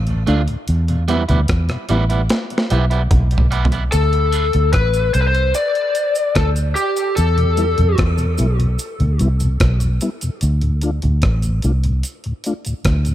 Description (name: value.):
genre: dub reggae.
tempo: 74 BPM.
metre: 4/4.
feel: straight.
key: D dorian.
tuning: A4 = 440 Hz.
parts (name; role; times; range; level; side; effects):
vintage muted fingered electric bass; bass; 0.0-13.1 s; A1 to F2; -16 LUFS; equal; none.
mellow tonewheel organ; accompaniment; 0.1-13.1 s; D2 to F4; -23 LUFS; left 1 dB; chorus vibrato, high-pass filter.
breakbeat sampler-style drum kit; drums; 0.1-13.1 s; hi-hat, kick drum, rim click, snare drum, toms; -20 LUFS; equal; none.
electric guitar at the edge of break-up; accompaniment; 0.3-4.5 s; G3 to F4; -24 LUFS; right 5 dB; high-pass filter, dub echo.
lead guitar through a small cranked amp; melody; 3.9-8.0 s; G4 to D5; -19 LUFS; left 3 dB; overdrive, dub echo.
cabasa; percussion; 3.9-13.1 s; none; -33 LUFS; right 4 dB; high-pass filter on perc.
room: digital ambience.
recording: none.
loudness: -15 LUFS.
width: side -13 dB against mid.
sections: 0.0-3.9 A section; 3.9-13.1 B section.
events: break 0.0-3.9; filter sweep 0.7-7.2; drum fill 2.3-3.9.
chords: 0.0 Dm; 0.7 Em; 3.9 Dm; 7.2 E5; 10.4 D5.